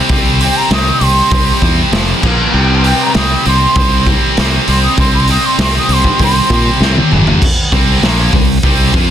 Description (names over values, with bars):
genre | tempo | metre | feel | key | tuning
hard rock | 98 BPM | 4/4 | straight | unclear | A4 = 443 Hz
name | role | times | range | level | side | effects
scooped high-gain guitar | riff | 0.0-9.1 s | F2 to F4 | -13 LUFS | equal | distortion
fingered electric bass | bass | 0.1-9.1 s | F1 to Bb2 | -14 LUFS | equal | none
raw garage drum kit | drums | 0.1-9.1 s | crash cymbal, hi-hat, kick drum, snare drum, toms | -14 LUFS | equal | none
bansuri | melody | 0.4-6.8 s | G5 to Eb6 | -16 LUFS | right 1 dB | none
room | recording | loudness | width
light reverb, small room ambience | dense, heavily limited modern master | -9 LUFS | side -10 dB against mid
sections
0.0-7.4 A section; 7.4-9.1 B section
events
bansuri solo 0.0-7.4; drum fill 6.8-7.4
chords
0.0 C5; 1.9 F5; 2.2 Bb5; 2.5 C5; 7.1 F#5; 7.4 C5